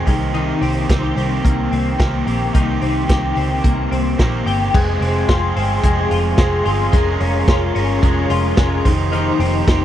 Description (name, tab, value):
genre	jangly indie pop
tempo	109 BPM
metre	4/4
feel	straight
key	F minor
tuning	A4 = 440 Hz
part	overdriven electric guitar	accompaniment	0.0-9.8 s	F2 to C5	-23 LUFS	right 7 dB	none
part	twelve-string electric guitar	arpeggios	0.0-9.8 s	Eb3 to G4	-20 LUFS	left 6 dB	ensemble chorus, tape echo
part	vintage muted picked electric bass	bass	0.1-9.8 s	F1 to Db2	-20 LUFS	equal	none
part	vintage drum kit	drums	0.1-9.8 s	crash cymbal, hi-hat, kick drum, snare drum	-17 LUFS	equal	none
part	hollow soft pad	sustained chords	4.7-9.8 s	G4 to C6	-26 LUFS	right 1 dB	ensemble chorus
room	little or no reverb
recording	dry, close 1970s-style studio recording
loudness	-14 LUFS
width	side -11 dB against mid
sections	0.0-4.7 A section; 4.7-9.8 B section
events	none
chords	0.1 Cm7; 4.7 Fm; 6.9 Bbm7/F; 8.9 Cm7/F